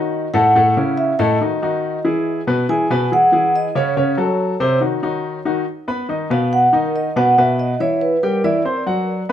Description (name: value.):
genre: jazz.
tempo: 141 BPM.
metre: 4/4.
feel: straight.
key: unclear.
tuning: A4 = 440 Hz.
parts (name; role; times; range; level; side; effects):
vibraphone with soft mallets; melody; 0.0-8.6 s; A#4 to G#5; -18 LUFS; right 1 dB; tape echo.
clear baby grand piano; accompaniment; 0.0-9.3 s; A2 to C6; -18 LUFS; left 2 dB; none.
room: moderate club reverb, RT60 0.7 s.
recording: none.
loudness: -15 LUFS.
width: side -10 dB against mid.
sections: 0.0-5.7 A section; 5.7-9.3 B section.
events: vibraphone solo 5.7-9.3.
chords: 0.0 B (rootless); 0.6 A6; 1.4 D#madd11; 2.3 E69; 4.0 F#m; 4.8 D#m; 5.7 B; 7.4 Badd11; 8.2 C.